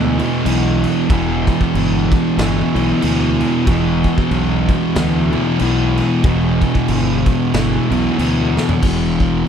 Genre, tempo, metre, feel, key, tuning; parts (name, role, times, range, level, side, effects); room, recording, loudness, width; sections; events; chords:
stoner and doom metal; 93 BPM; 4/4; swing 58% on 8ths; A4 = 441 Hz
biting overdriven guitar; riff; 0.0-8.8 s; E2 to E3; -21 LUFS; right 2 dB
thick fuzz guitar; riff; 0.0-9.5 s; E2 to E3; -20 LUFS; left 10 dB; distortion
thick fuzz guitar; riff; 0.0-9.5 s; E2 to E3; -20 LUFS; right 9 dB; distortion
fuzz fingered electric bass; bass; 0.0-9.5 s; E1 to D2; -20 LUFS; equal; overdrive
raw garage drum kit; drums; 0.2-9.3 s; crash cymbal, kick drum, snare drum, toms; -21 LUFS; equal
little or no reverb; -14 LUFS; side -8 dB against mid
0.0-8.8 A section
drum fill 8.5-8.8
0.0 Em; 8.8 E5